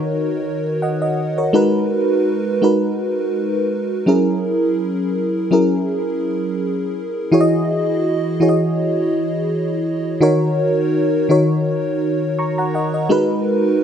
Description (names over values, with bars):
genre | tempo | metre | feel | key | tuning
R&B | 83 BPM | 4/4 | swing 54% on 16ths | G# minor | A4 = 439 Hz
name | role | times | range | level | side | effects
FM electric piano with soft pad layer | solo | 0.0-13.8 s | D#3 to C#6 | -16 LUFS | equal | chorus
room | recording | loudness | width
moderate plate reverb, RT60 2.9 s | nothing above 10.9 kHz | -16 LUFS | side -8 dB against mid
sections
0.0-13.8 A section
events
none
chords
0.0 D#m7; 1.5 G#m7; 4.1 F#7; 7.3 Emaj7; 10.2 D#m7; 13.1 G#m7